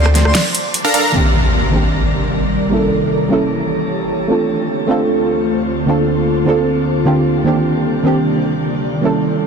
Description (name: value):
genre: future bass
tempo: 152 BPM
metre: 4/4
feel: half-time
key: C dorian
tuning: A4 = 440 Hz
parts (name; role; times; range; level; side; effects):
- airy dreamy lead; arpeggios; 0.0-1.1 s; C6 to Bb6; -28 LUFS; left 1 dB; chorus, cassette tape, dub echo
- supersaw stab; riff; 0.0-1.1 s; F3 to Bb5; -22 LUFS; right 1 dB; low-pass filter, dub echo
- big-room dance drum kit; drums; 0.1-1.0 s; crash cymbal, hi-hat, rim click, snare drum; -20 LUFS; equal; overdrive
- soft round pluck; accompaniment; 1.1-9.5 s; D3 to A4; -16 LUFS; right 2 dB; ensemble chorus, cassette tape, dub echo
- ethereal airy pad; sustained chords; 2.0-9.5 s; D2 to D5; -19 LUFS; left 1 dB; ensemble chorus, built-in reverb
- impact; sound effects; 1.1-2.7 s; none; -19 LUFS; left 1 dB; none
room: moderate shimmer reverb, RT60 5.3 s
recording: dense, heavily limited modern master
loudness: -13 LUFS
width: side -6 dB against mid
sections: 0.0-1.1 A section; 1.1-9.5 B section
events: drop 0.0-1.1; impact 1.1-2.7; filter sweep on ambient pad 1.1-9.5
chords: 0.3 Bbmaj7; 1.1 Cm7; 2.7 A7b9; 4.3 Dm7; 5.9 Gm11/D; 7.5 Cm7